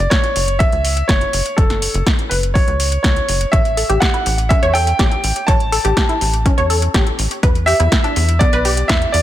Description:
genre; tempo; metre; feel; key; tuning
progressive house; 123 BPM; 4/4; straight; unclear; A4 = 440 Hz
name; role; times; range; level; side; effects
clear grand piano; melody; 0.0-9.2 s; A4 to A5; -19 LUFS; equal; ping-pong delay
tight sequencer bass; bass; 0.0-9.2 s; F#1 to E2; -18 LUFS; equal; tube saturation, sidechain pumping
deep house drum kit; drums; 0.1-9.2 s; hi-hat, snare drum; -21 LUFS; equal; overdrive, sidechain pumping on hats
electronic kick drum; drums; 0.1-9.0 s; none; -16 LUFS; equal; overdrive
wide unison pluck; arpeggios; 3.5-8.9 s; B3 to C#5; -21 LUFS; equal; sidechain pumping, ping-pong delay
room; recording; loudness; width
little or no reverb; none; -13 LUFS; side -13 dB against mid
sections
0.0-9.2 A section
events
none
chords
0.0 F#5; 3.5 A5; 7.4 E7(no3)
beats
0.12 0.60 1.09 | 1.58 2.07 2.55 3.04 | 3.53 4.02 4.50 4.99 | 5.48 5.97 6.46 6.94 | 7.43 7.92 8.41 8.89

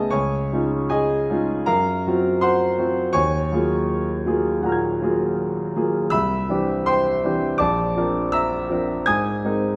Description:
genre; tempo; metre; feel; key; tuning
classical, impressionist solo piano; 81 BPM; 4/4; rubato; unclear; A4 = 438 Hz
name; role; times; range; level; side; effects
clear concert grand piano; solo; 0.0-9.8 s; A#1 to G#6; -21 LUFS; equal; none
room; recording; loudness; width
wet recital hall reverb, RT60 1.3 s; none; -21 LUFS; mono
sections
0.0-9.8 A section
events
none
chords
0.1 C#add9; 1.6 F#maj7#11; 3.1 D#m11; 6.1 Cadd9; 7.6 A#add9; 9.1 G#add9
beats
| 0.11 0.88 1.65 2.41 | 3.14 3.88 4.62 5.37 | 6.12 6.85 7.59 8.32 | 9.06

